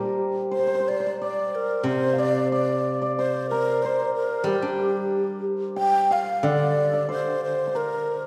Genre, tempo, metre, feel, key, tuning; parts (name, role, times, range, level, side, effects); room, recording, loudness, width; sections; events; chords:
chinese traditional, Chinese chamber ensemble; 91 BPM; 2/4; rubato; G yu mode; A4 = 440 Hz
breathy mellow xiao; melody; 0.0-8.2 s; G4 to G5; -27 LUFS; equal
hammered dulcimer; second line; 0.0-8.3 s; G4 to G5; -29 LUFS; equal
steel-string zither; accompaniment; 0.0-8.3 s; C3 to D4; -31 LUFS; equal
wet concert hall reverb, RT60 2.1 s; recorded in a church or concert hall; -24 LUFS; mono
0.0-5.8 A section; 5.8-8.3 B section